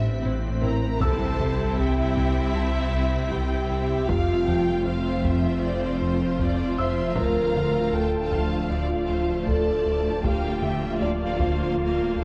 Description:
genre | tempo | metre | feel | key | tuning
cinematic, hybrid orchestral and electronic film score | 78 BPM | 4/4 | straight | unclear | A4 = 439 Hz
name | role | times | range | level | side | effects
rich symphonic violin section | melody | 0.0-12.2 s | C5 to C6 | -38 LUFS | equal | none
rich symphonic violin section | second line | 0.0-12.2 s | A4 to G5 | -37 LUFS | equal | none
icy glass pad | sustained chords | 0.0-12.2 s | E3 to E5 | -36 LUFS | equal | chorus, built-in reverb
mellow French horn section | sustained chords | 0.0-12.2 s | E3 to C5 | -30 LUFS | equal | none
round analog bass | riff | 0.0-12.2 s | C2 to F3 | -32 LUFS | equal | none
punchy sub bass | bass | 0.0-12.2 s | D1 to C2 | -35 LUFS | equal | none
rich symphonic cello section | bass | 0.0-12.2 s | D2 to C3 | -35 LUFS | equal | none
rich symphonic double bass section | bass | 0.0-12.2 s | F1 to D2 | -34 LUFS | equal | none
swell and impact | sound effects | 0.0-4.1 s | none | -36 LUFS | equal | none
felt-muted upright piano | texture | 0.0-12.2 s | D4 to E6 | -39 LUFS | equal | tape echo
rich symphonic viola section | accompaniment | 0.2-12.2 s | A3 to F4 | -34 LUFS | equal | none
taiko ensemble | drums | 0.6-12.1 s | none | -33 LUFS | equal | none
room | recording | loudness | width
moderate scoring stage reverb, RT60 1.8 s | worn, warbling old tape, cassette tape, warbly pitch drift | -24 LUFS | mono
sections
0.0-1.0 A section; 1.0-12.2 B section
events
swell 0.0-1.0; impact 1.0-4.1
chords
0.0 Am; 1.0 C; 4.1 F; 7.2 Dmadd9; 10.2 Bb/D

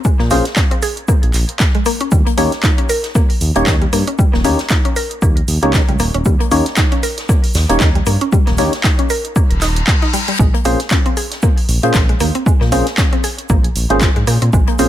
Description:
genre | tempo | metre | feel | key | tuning
deep house | 116 BPM | 4/4 | swing 57% on 16ths | unclear | A4 = 440 Hz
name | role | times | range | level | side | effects
mallet-like synth pluck | arpeggios | 0.0-14.8 s | G3 to Bb4 | -21 LUFS | left 1 dB | chorus, phaser, sidechain pumping, dub echo
electronic kick drum | drums | 0.0-14.6 s | none | -14 LUFS | equal | overdrive
huge arena drum kit | drums | 0.0-14.9 s | hi-hat, shaker, snare drum | -29 LUFS | right 1 dB | high-pass filter on hats, high-pass filter on snare, high-pass filter on perc, high-pass filter on room
smooth synth bass | bass | 0.2-14.9 s | Eb1 to Bb2 | -17 LUFS | equal | sidechain pumping
percussive organ stab | stabs | 0.3-14.9 s | Bb3 to Db5 | -19 LUFS | equal | analog chorus, sidechain pumping, dub echo
punchy analog drum machine | drums | 0.3-14.9 s | handclaps, hi-hat | -21 LUFS | right 1 dB | none
reverse cymbal | sound effects | 9.5-10.4 s | none | -22 LUFS | left 3 dB | none
room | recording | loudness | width
studio ambience | none | -12 LUFS | side -12 dB against mid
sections
0.0-14.9 A section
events
reverse cymbal 9.5-10.4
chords
0.0 Bbm9; 1.9 Eb7; 10.4 Bbm9

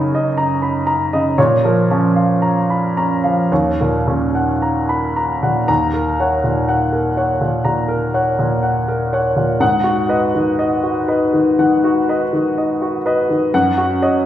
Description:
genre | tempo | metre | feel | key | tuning
neoclassical minimalist piano | 54-63 BPM | 4/4 | rubato | Eb minor | A4 = 440 Hz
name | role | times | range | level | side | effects
clear baby grand piano | solo | 0.0-14.3 s | Eb2 to Cb6 | -14 LUFS | equal | none
room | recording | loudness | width
wet recital hall reverb, RT60 1.4 s | heard from further back in the room | -14 LUFS | side -11 dB against mid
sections
0.0-5.7 A section; 5.7-14.3 B section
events
none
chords
0.0 Ebm7/Gb; 1.4 Bbm; 3.5 Ebm7; 9.6 Abm7; 13.5 Ebm7/Gb

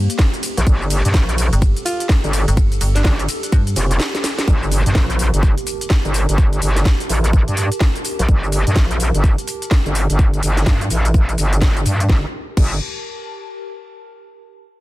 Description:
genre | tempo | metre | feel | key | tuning
bass house | 126 BPM | 4/4 | swing 61% on 16ths | G minor | A4 = 440 Hz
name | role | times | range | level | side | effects
sweeping resonant pad | sustained chords | 0.0-4.5 s | G3 to C5 | -44 LUFS | left 1 dB | none
metallic FM bass | bass | 0.0-3.7 s | G1 to G2 | -17 LUFS | equal | overdrive, sidechain pumping
warbly tape-like pad | texture | 0.0-14.0 s | Bb3 to A5 | -30 LUFS | equal | chorus, built-in reverb, phaser, sidechain pumping
garage drum kit | drums | 0.1-12.7 s | crash cymbal, hi-hat, ride cymbal, shaker, snare drum | -24 LUFS | equal | none
electronic kick drum | drums | 0.2-12.7 s | none | -16 LUFS | equal | none
metallic wobble bass | bass | 0.6-12.8 s | F1 to G2 | -17 LUFS | equal | chorus, overdrive, sidechain pumping
clear alto saxophone | melody | 1.9-3.1 s | D4 to F4 | -27 LUFS | right 1 dB | digital delay
impact | sound effects | 4.5-6.4 s | none | -27 LUFS | equal | none
room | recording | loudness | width
digital ambience | dense, heavily limited modern master | -14 LUFS | side -17 dB against mid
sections
0.0-4.5 A section; 4.5-12.1 B section; 12.1-14.0 C section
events
drop 0.0-4.5; break 4.0-4.5; drum fill 4.1-4.5; fade-out on ambient pad 4.5-12.1; impact 4.5-6.4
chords
0.0 Gmadd9

